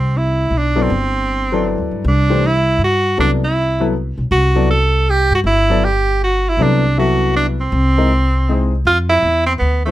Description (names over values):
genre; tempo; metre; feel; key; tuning
modal jazz; 158 BPM; 3/4; swing 64% on 8ths; C lydian; A4 = 441 Hz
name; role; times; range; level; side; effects
bright tenor saxophone; melody; 0.0-9.9 s; A3 to A4; -16 LUFS; right 2 dB; none
upright bass; bass; 0.0-9.9 s; G1 to G2; -16 LUFS; equal; none
clear grand piano; accompaniment; 0.8-9.9 s; E3 to E5; -19 LUFS; left 4 dB; none
room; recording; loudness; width
little or no reverb; none; -13 LUFS; side -15 dB against mid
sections
0.0-8.9 A section; 8.9-9.9 B section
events
none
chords
0.0 Cmaj9#11; 2.0 Dadd9/C; 4.3 C(#11); 6.6 Dadd9/C; 7.7 Caug; 8.9 Fmaj7(no3)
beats
0.14 0.52 | 0.90 1.28 1.66 | 2.04 2.42 2.80 | 3.18 3.56 3.94 | 4.32 4.69 5.07 | 5.45 5.83 6.21 | 6.59 6.97 7.35 | 7.73 8.11 8.48 | 8.86 9.24 9.62